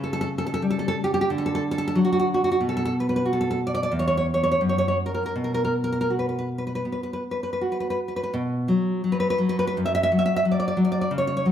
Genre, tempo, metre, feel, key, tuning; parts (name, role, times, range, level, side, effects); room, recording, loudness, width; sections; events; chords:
romantic piece for solo classical guitar; 77-93 BPM; 4/4; rubato; B minor; A4 = 440 Hz
nylon-string guitar; solo; 0.0-11.5 s; E2 to E5; -22 LUFS; equal
moderate recital hall reverb, RT60 1.3 s; -22 LUFS; side -9 dB against mid
0.0-8.3 A section; 8.3-11.5 B section
0.0 A7/C#; 1.3 D; 2.6 B5; 3.9 N.C.; 5.3 B5